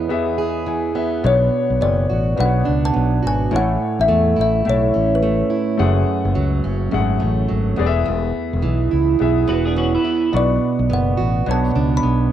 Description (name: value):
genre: acoustic pop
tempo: 106 BPM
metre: 4/4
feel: swing 60% on 16ths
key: unclear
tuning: A4 = 440 Hz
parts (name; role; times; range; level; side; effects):
- kalimba; melody; 0.0-5.5, 10.4-12.3 s; B4 to B5; -21 LUFS; left 3 dB; cassette tape
- fingerpicked plugged-in steel-string acoustic guitar; accompaniment; 0.0-12.3 s; E2 to G#4; -20 LUFS; right 6 dB; cassette tape
- warm grand piano; accompaniment; 0.0-12.3 s; A3 to C#6; -25 LUFS; left 9 dB; cassette tape
- fingered electric bass; bass; 1.2-12.3 s; E1 to E2; -19 LUFS; left 1 dB; none
- twelve-string electric guitar; second line; 9.5-10.3 s; B3 to B4; -24 LUFS; left 1 dB; cassette tape
room: light reverb, small room reverb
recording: home recording on cassette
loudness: -16 LUFS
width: side -11 dB against mid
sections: 0.0-1.2 A section; 1.2-12.3 B section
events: break 0.0-1.2; grand piano fill 0.4-1.2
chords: 0.0 E; 1.2 Bmadd9; 3.5 A; 5.8 F#madd9; 7.8 E; 10.3 Bmadd9